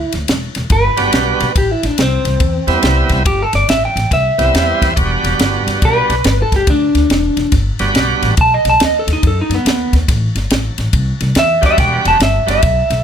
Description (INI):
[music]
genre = electric blues shuffle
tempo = 141 BPM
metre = 4/4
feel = swing 64% on 8ths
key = E minor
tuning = A4 = 438 Hz
[part]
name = electric guitar through a small old amp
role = melody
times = 0.0-13.0 s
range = B3 to A5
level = -15 LUFS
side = equal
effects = plate reverb
[part]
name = upright bass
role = bass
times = 0.0-13.0 s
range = E1 to F#2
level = -17 LUFS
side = equal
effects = none
[part]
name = compact cocktail drum kit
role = drums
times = 0.1-13.0 s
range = kick drum, ride cymbal, snare drum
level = -17 LUFS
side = equal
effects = none
[part]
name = bright tonewheel organ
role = accompaniment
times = 1.0-8.4, 11.6-12.6 s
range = G3 to F#4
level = -17 LUFS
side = right 4 dB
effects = slow rotary speaker
[sound]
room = light reverb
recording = none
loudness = -11 LUFS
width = side -8 dB against mid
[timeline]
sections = 0.0-13.0 A section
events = none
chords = 0.0 Em7; 1.6 Am7; 5.0 Em7; 8.4 B; 10.1 Am7; 11.8 Em7